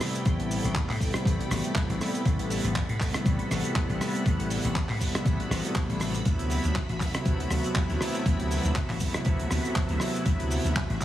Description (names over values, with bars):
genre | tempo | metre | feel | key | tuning
nu-disco, nu disco | 120 BPM | 4/4 | swing 55% on 16ths | A dorian | A4 = 439 Hz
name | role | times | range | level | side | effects
warm analog pad | accompaniment | 0.0-11.0 s | C3 to F#4 | -31 LUFS | equal | chorus, sidechain pumping, tape echo
string machine, full ensemble | sustained chords | 0.0-11.0 s | F#4 to B5 | -37 LUFS | equal | phaser, ensemble chorus, sidechain pumping
damped 70s drum kit | drums | 0.0-11.0 s | cabasa, handclaps, hi-hat, rim click | -33 LUFS | right 1 dB | none
vintage slap bass | bass | 0.3-11.0 s | A1 to A2 | -29 LUFS | left 1 dB | sidechain pumping
electronic kick drum | drums | 0.3-11.0 s | none | -27 LUFS | equal | overdrive
room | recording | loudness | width
light reverb, small room ambience | heavily compressed radio sound, studio ambience | -25 LUFS | side -12 dB against mid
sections
0.0-11.0 A section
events
none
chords
0.0 Am9; 6.3 D13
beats
| 0.26 0.76 1.26 1.76 | 2.26 2.76 3.26 3.76 | 4.26 4.76 5.26 5.76 | 6.26 6.76 7.26 7.76 | 8.26 8.76 9.26 9.76 | 10.26 10.76